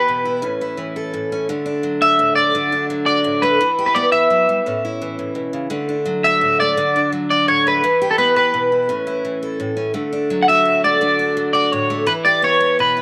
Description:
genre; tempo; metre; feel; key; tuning
highlife; 113 BPM (dotted quarters); 12/8; straight; D major; A4 = 440 Hz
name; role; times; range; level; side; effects
clean electric guitar; melody; 0.0-13.0 s; A4 to F#5; -18 LUFS; equal; lush chorus
picked steel-string acoustic guitar; accompaniment; 0.0-13.0 s; A2 to A4; -23 LUFS; equal; none
room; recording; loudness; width
moderate spring reverb, RT60 2.9 s; none; -18 LUFS; mono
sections
0.0-13.0 A section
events
none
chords
0.4 A; 1.5 D; 3.6 Em; 4.7 A; 5.7 D; 7.8 Em; 8.9 A; 10.0 D; 12.1 Em

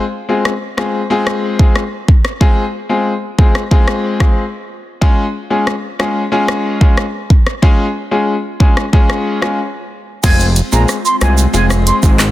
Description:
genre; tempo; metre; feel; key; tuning
dancehall; 92 BPM; 4/4; straight; F minor; A4 = 441 Hz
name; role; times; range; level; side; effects
clear grand piano; accompaniment; 0.0-12.2 s; Ab3 to Ab4; -16 LUFS; left 2 dB; none
deep house drum kit; drums; 0.5-12.3 s; crash cymbal, handclaps, hi-hat, kick drum, rim click, shaker; -12 LUFS; equal; soft clipping on snare
mellow concert flute; melody; 10.2-12.0 s; Ab5 to C6; -18 LUFS; right 2 dB; digital delay
glassy FM pad; sustained chords; 10.2-12.3 s; Ab3 to F4; -23 LUFS; right 2 dB; ensemble chorus, built-in reverb, sidechain pumping
fat analog bass; bass; 10.2-12.3 s; F1 to C2; -12 LUFS; equal; none
tube shaker; percussion; 10.2-12.3 s; none; -28 LUFS; right 12 dB; none
room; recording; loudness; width
digital ambience; dense, heavily limited modern master; -11 LUFS; side -15 dB against mid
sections
0.0-10.2 A section; 10.2-12.3 B section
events
break 9.6-10.2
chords
0.0 Fm; 5.0 Db; 10.2 Fm

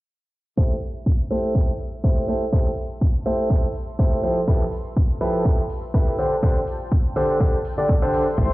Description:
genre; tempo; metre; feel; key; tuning
piano house; 123 BPM; 4/4; swing 53% on 16ths; A minor; A4 = 440 Hz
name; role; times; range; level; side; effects
clear concert grand piano; riff; 0.6-8.5 s; D3 to D5; -23 LUFS; equal; sidechain pumping, low-pass filter, dub echo
electronic kick drum; drums; 0.6-8.5 s; none; -19 LUFS; equal; overdrive
tambourine; percussion; 0.6-8.5 s; none; -67 LUFS; right 1 dB; none
granular cloud pad; texture; 2.9-8.5 s; D4 to C6; -38 LUFS; equal; none
electronic hi-hat; drums; 0.8-8.2 s; none; -64 LUFS; equal; none
warm studio violin section; sustained chords; 8.4-8.5 s; C5 to C6; -27 LUFS; left 4 dB; sidechain pumping
fat analog bass; bass; 8.4-8.5 s; A1; -22 LUFS; equal; sidechain pumping
room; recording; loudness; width
little or no reverb; played on a big sound system in a bare room, stone room reverb, low-pass filter; -19 LUFS; side -18 dB against mid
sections
0.6-8.5 A section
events
filter sweep on grand piano 0.6-8.5; filter sweep 0.6-8.5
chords
0.6 Am7; 4.5 Fmaj9#11; 6.2 D7sus4

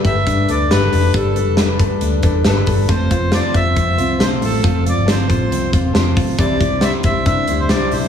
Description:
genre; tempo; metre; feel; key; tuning
jangly indie pop; 137 BPM; 4/4; straight; unclear; A4 = 441 Hz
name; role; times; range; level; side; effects
fingerpicked steel-string acoustic guitar; accompaniment; 0.0-8.1 s; C3 to C5; -22 LUFS; right 4 dB; none
direct-recorded clean electric guitar; arpeggios; 0.0-8.1 s; C3 to C5; -22 LUFS; left 8 dB; none
vintage muted fingered electric bass; bass; 0.0-8.1 s; E1 to C3; -19 LUFS; left 1 dB; none
big rock drum kit; drums; 0.0-8.0 s; hi-hat, kick drum, snare drum; -18 LUFS; equal; none
accordion; melody; 0.1-8.1 s; A4 to E5; -22 LUFS; equal; tape echo
room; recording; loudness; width
light reverb; small room ambience; -13 LUFS; side -8 dB against mid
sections
0.0-8.1 A section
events
none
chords
0.0 Gadd9; 2.9 F; 6.4 Cadd9

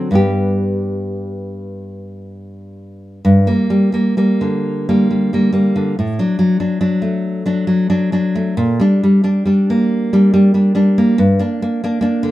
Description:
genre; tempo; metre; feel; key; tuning
romantic piece for solo classical guitar; 37-49 BPM (dotted quarters); 6/8; rubato; G major, G minor from 3.2 s; A4 = 440 Hz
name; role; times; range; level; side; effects
nylon-string guitar; solo; 0.0-12.3 s; G2 to G4; -13 LUFS; equal; none
room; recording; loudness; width
moderate studio reverb, RT60 0.8 s; band playing live in one room; -13 LUFS; side -15 dB against mid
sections
0.0-3.2 A section; 3.2-12.3 B section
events
none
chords
0.1 G; 3.2 Gm; 6.0 D/A; 8.6 Gm/Bb; 11.2 Gm

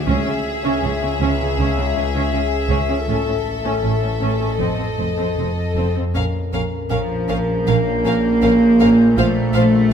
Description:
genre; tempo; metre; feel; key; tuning
cinematic, suspense film score; 80 BPM; 4/4; straight; C# harmonic minor, Bb harmonic minor from 6.2 s; A4 = 440 Hz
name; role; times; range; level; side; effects
warm symphonic violin section; melody; 0.0-9.6 s; Eb5 to F5; -27 LUFS; left 5 dB; none
warm studio violin section; second line; 0.0-9.6 s; G#4 to C5; -25 LUFS; left 4 dB; none
analog drone; drone; 0.0-9.9 s; A1 to F2; -23 LUFS; equal; chorus
warm studio viola section; accompaniment; 0.1-9.6 s; C4 to F4; -26 LUFS; right 3 dB; none
dark symphonic double bass section; bass; 0.1-9.6 s; F1 to C#2; -24 LUFS; right 4 dB; none
rich symphonic cello section; bass; 0.1-9.9 s; F2 to Bb3; -19 LUFS; right 2 dB; none
mellow French horn section; sustained chords; 6.2-9.9 s; Db4 to C5; -23 LUFS; left 4 dB; none
dark studio violin section; texture; 6.2-9.9 s; Bb5 to G6; -34 LUFS; left 2 dB; none
room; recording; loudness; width
moderate recital hall reverb, RT60 1.5 s; none; -16 LUFS; side -8 dB against mid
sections
0.0-6.2 A section; 6.2-9.9 B section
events
none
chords
0.1 C#m; 3.1 A; 4.6 F7; 6.2 Bbm; 9.2 F/Bb

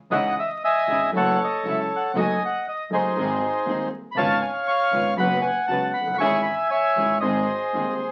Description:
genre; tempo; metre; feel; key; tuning
tango; 118 BPM; 4/4; rubato; C# minor; A4 = 440 Hz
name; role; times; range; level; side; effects
bandoneon; melody; 0.1-8.1 s; D#4 to C#6; -24 LUFS; equal; none
warm concert grand piano; accompaniment; 0.1-8.0 s; D#1 to A4; -31 LUFS; equal; none
rich chamber string section; stabs; 0.1-8.0 s; A3 to B4; -34 LUFS; equal; none
warm double bass; bass; 0.1-8.0 s; F#1 to D#2; -37 LUFS; equal; none
room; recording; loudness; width
moderate studio reverb, RT60 0.5 s; very old 78 rpm record, vinyl crackle; -23 LUFS; mono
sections
0.1-8.1 A section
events
none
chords
0.1 C#madd9; 1.1 F#m7; 2.1 D#dim/F#; 3.2 G#; 4.2 C#7/G#; 5.2 F#sus4; 6.2 C#m/G#; 7.2 G#

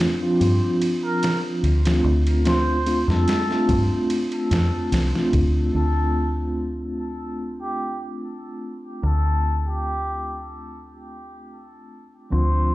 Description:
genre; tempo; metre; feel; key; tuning
trip hop; 73 BPM; 4/4; straight; D minor; A4 = 440 Hz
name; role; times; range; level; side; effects
mellow tine electric piano; accompaniment; 0.0-12.7 s; F3 to F4; -24 LUFS; equal; medium stereo tremolo, vintage 12-bit sampler grit, tape echo
trip hop sampler-style drum kit; drums; 0.0-5.5 s; kick drum, ride cymbal, snare drum; -26 LUFS; equal; none
deep dub fingered electric bass; bass; 0.4-12.7 s; C2 to G2; -21 LUFS; equal; none
trumpet with cup mute; melody; 1.0-12.7 s; G4 to C5; -30 LUFS; left 1 dB; tape echo
room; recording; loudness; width
digital ambience; played on a big sound system in a bare room, large studio reverb; -19 LUFS; side -17 dB against mid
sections
0.0-5.7 A section; 5.7-12.7 B section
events
none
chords
0.0 Dm7

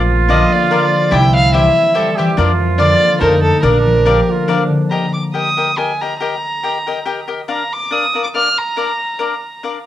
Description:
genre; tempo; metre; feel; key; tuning
mexican folk, mariachi; 141 BPM; 3/4; swing 53% on 8ths; Bb major, Eb major from 4.9 s; A4 = 442 Hz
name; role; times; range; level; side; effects
mellow trumpet; second line; 0.0-4.9 s; D4 to A4; -19 LUFS; right 5 dB; cassette tape
concert harp; arpeggios; 0.0-7.5 s; D3 to C4; -19 LUFS; left 2 dB; cassette tape
upright bass; bass; 0.0-4.2 s; Bb1 to F2; -15 LUFS; equal; none
dark violin; melody; 0.3-9.6 s; A4 to F6; -16 LUFS; right 1 dB; cassette tape, analog delay
cavaquinho; accompaniment; 0.3-9.8 s; D4 to G5; -20 LUFS; left 6 dB; cassette tape
room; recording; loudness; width
moderate studio reverb, RT60 0.6 s; home recording on cassette; -12 LUFS; side -12 dB against mid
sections
0.0-4.9 A section; 4.9-9.9 B section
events
none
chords
0.0 Bb; 1.1 C; 2.4 Bb/F; 3.2 F; 3.6 Bb; 4.9 Eb; 7.5 Bb

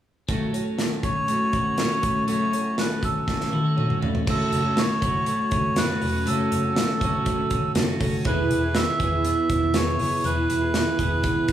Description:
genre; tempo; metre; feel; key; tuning
jangly indie pop; 121 BPM; 4/4; straight; F# minor; A4 = 440 Hz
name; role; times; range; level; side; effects
fingerpicked twelve-string acoustic guitar; accompaniment; 0.3-11.5 s; F#2 to G#4; -29 LUFS; right 5 dB; none
twelve-string electric guitar; arpeggios; 0.3-11.5 s; E3 to G#4; -28 LUFS; left 3 dB; phaser
big rock drum kit; drums; 0.3-11.5 s; crash cymbal, hi-hat, kick drum, snare drum, toms; -26 LUFS; equal; none
melodica; melody; 1.0-11.5 s; A4 to E5; -26 LUFS; right 1 dB; none
vintage muted picked electric bass; bass; 4.3-11.5 s; E1 to F#1; -28 LUFS; equal; none
room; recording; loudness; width
wet large studio reverb, RT60 1.1 s; band playing live in one room, studio reverb; -21 LUFS; side -11 dB against mid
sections
0.3-4.3 A section; 4.3-11.5 B section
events
drum fill 3.3-4.3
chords
0.3 F#m; 8.3 E

